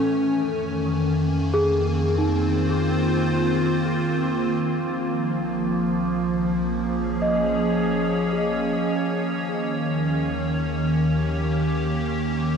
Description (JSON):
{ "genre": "ambient", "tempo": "52 BPM", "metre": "4/4", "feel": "straight", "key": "unclear", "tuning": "A4 = 439 Hz", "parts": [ { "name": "evolving wavetable pad", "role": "sustained chords", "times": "0.0-12.6 s", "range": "Eb3 to Ab5", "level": "-22 LUFS", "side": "equal", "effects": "chorus, built-in reverb" }, { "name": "celesta", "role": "arpeggios", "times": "0.0-10.9 s", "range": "C#4 to C#6", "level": "-26 LUFS", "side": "left 1 dB", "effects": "ping-pong delay, shimmer reverb" }, { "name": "deep rumbling drone", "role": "bass", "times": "0.0-12.6 s", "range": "Bb1 to F2", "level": "-31 LUFS", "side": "equal", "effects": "built-in reverb" } ], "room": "wet huge ambient reverb, RT60 7.7 s", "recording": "none", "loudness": "-21 LUFS", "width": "side -6 dB against mid", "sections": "0.0-4.6 A section; 4.6-12.6 B section", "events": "none", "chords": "0.0 F7sus4; 4.6 Bbm7; 9.3 Eb7", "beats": "| 0.02 1.18 2.33 3.48 | 4.64 5.79 6.94 8.10 | 9.25 10.40 11.56" }